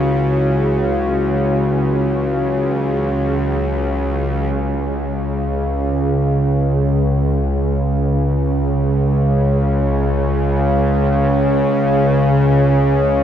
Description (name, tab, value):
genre	dark ambient drone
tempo	free time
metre	none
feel	none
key	unclear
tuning	A4 = 439 Hz
part	dark analog pad	sustained chords	0.0-4.5 s	E4 to C#5	-24 LUFS	left 1 dB	chorus
part	bowed-like drone	drone	0.0-13.2 s	C#2 to C#3	-15 LUFS	equal	built-in reverb
room	wet spring reverb, RT60 2.5 s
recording	none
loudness	-15 LUFS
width	side -9 dB against mid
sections	0.0-4.5 A section; 4.5-13.2 B section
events	none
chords	0.0 C#m; 4.5 N.C.